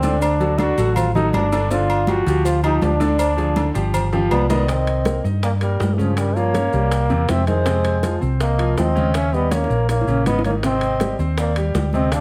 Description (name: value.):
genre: Afro-Cuban jazz.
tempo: 161 BPM.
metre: 4/4.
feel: straight.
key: C minor.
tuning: A4 = 441 Hz.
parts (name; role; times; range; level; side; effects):
bright trombone; melody; 0.0-12.2 s; E3 to F#4; -25 LUFS; equal; none.
clear grand piano; accompaniment; 0.0-12.2 s; C3 to Eb5; -26 LUFS; equal; none.
hollow-body short-scale fingered electric bass; bass; 0.0-12.2 s; G1 to G2; -23 LUFS; equal; none.
congas; percussion; 0.0-12.2 s; none; -29 LUFS; equal; none.
cowbell and bongos; percussion; 0.0-12.2 s; none; -33 LUFS; equal; none.
maracas; percussion; 0.0-12.2 s; none; -44 LUFS; equal; none.
agogo bells and timbales; percussion; 0.2-12.2 s; none; -32 LUFS; equal; none.
bright reedy bass bansuri; second line; 4.3-12.2 s; G4 to F5; -29 LUFS; equal; none.
room: light reverb.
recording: none.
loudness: -19 LUFS.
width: mono.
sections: 0.0-4.7 A section; 4.7-12.2 B section.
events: trombone solo 0.0-4.7; drum fill 4.1-4.7, 9.5-10.6.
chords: 0.2 D; 1.7 G5; 3.2 Ddim; 3.9 G7b13; 4.7 Cm7; 6.2 Gm7b5; 6.9 C7; 7.7 Fm7; 9.1 Eb7; 10.6 Abmaj7#11.